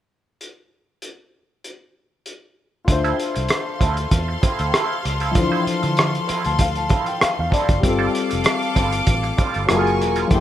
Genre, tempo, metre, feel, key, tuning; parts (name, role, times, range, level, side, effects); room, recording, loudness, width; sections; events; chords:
lush 1970s-style soul; 97 BPM; 4/4; swing 54% on 16ths; D minor; A4 = 439 Hz
cloth-damped thuddy drum kit; drums; 0.4-10.4 s; hi-hat, kick drum, rim click; -21 LUFS; right 1 dB
dark concert grand piano; accompaniment; 2.8-10.4 s; E3 to C6; -23 LUFS; left 4 dB
rich studio string section; second line; 2.9-10.4 s; A4 to D6; -25 LUFS; left 1 dB
semi-hollow electric guitar; riff; 2.9-10.3 s; F3 to C5; -28 LUFS; right 7 dB; wah
vintage muted fingered electric bass; bass; 2.9-10.4 s; E1 to D3; -25 LUFS; right 1 dB
light reverb, studio reverb; rough home demo mix; -17 LUFS; side -12 dB against mid
0.4-2.9 A section; 2.9-10.4 B section
grand piano fill 6.0-7.8
0.4 N.C.; 2.9 Dm9; 7.8 G9sus4; 9.7 F#maj9